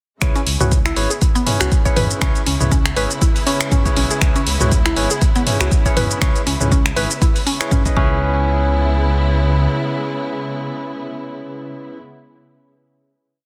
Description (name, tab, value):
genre	afro house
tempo	120 BPM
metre	4/4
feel	swing 56% on 16ths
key	C# minor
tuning	A4 = 440 Hz
part	rich symphonic string section	sustained chords	0.2-12.0 s	C#3 to E4	-29 LUFS	equal	sidechain pumping
part	barky tine electric piano	stabs	0.2-12.0 s	C#4 to D#5	-26 LUFS	equal	sidechain pumping, tape echo
part	smooth synth bass	bass	0.2-9.7 s	G#1 to E2	-22 LUFS	equal	sidechain pumping
part	deep house drum kit	drums	0.2-7.9 s	finger snaps, hi-hat, shaker, toms	-23 LUFS	equal	soft clipping on snare
part	electronic kick drum	drums	0.2-8.1 s	none	-19 LUFS	equal	none
part	mallet-like synth pluck	arpeggios	0.4-8.4 s	B3 to C#5	-26 LUFS	equal	chorus, sidechain pumping, tape echo
room	little or no reverb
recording	dense, heavily limited modern master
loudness	-17 LUFS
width	mono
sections	0.2-8.2 drop; 8.2-12.2 final hit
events	drop 0.2-8.2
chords	0.2 C#m7